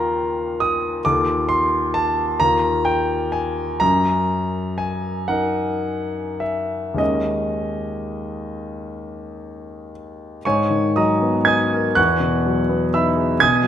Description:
classical, impressionist solo piano; 34-46 BPM (dotted quarters); 6/8; rubato; G# minor from 3.8 s; A4 = 442 Hz
warm concert grand piano; solo; 0.0-13.7 s; Eb2 to G#6; -18 LUFS; equal
wet recital hall reverb, RT60 1.7 s; -18 LUFS; side -10 dB against mid
0.0-10.4 A section; 10.4-13.7 B section
0.0 Ebsus2; 1.0 F7/Eb; 2.4 Ebadd9; 3.8 F#6; 7.0 D#7sus4; 10.4 G#m9; 12.0 Emaj9

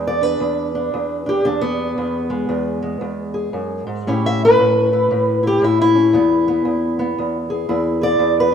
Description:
acoustic country blues, solo or duo; 115 BPM; 4/4; swing 62% on 8ths; E mixolydian; A4 = 440 Hz
fingerpicked steel-string acoustic guitar; solo; 0.0-8.5 s; E2 to E5; -16 LUFS; equal
wet lush hall reverb, RT60 2.3 s; rough home demo mix; -16 LUFS; side -8 dB against mid
0.0-8.5 A section
steel-string acoustic guitar solo 0.0-8.5
0.0 E7; 4.1 A7; 6.1 E7

